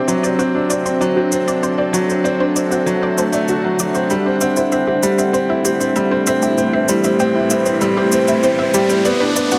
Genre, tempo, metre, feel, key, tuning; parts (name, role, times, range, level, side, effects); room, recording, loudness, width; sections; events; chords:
piano and strings electronica; 97 BPM; 4/4; straight; A dorian; A4 = 440 Hz
granular cloud pad; sustained chords; 0.0-9.6 s; A3 to F#5; -24 LUFS; equal; built-in reverb
analog pluck; arpeggios; 0.0-9.6 s; F#4 to E5; -26 LUFS; equal; chorus, delay
bright baby grand piano; riff; 0.0-9.6 s; F#3 to F#4; -18 LUFS; equal; delay
shaker; drums; 0.1-9.6 s; -27 LUFS; equal
riser; sound effects; 6.2-9.6 s; -31 LUFS; equal
wet lush hall reverb, RT60 2.3 s; -16 LUFS; mono
0.0-4.1 A section; 4.1-9.6 B section
build-up 4.1-9.6; filter sweep on ambient pad 4.1-9.6; riser 6.2-9.6
0.0 D7; 4.1 Am7; 9.1 Bm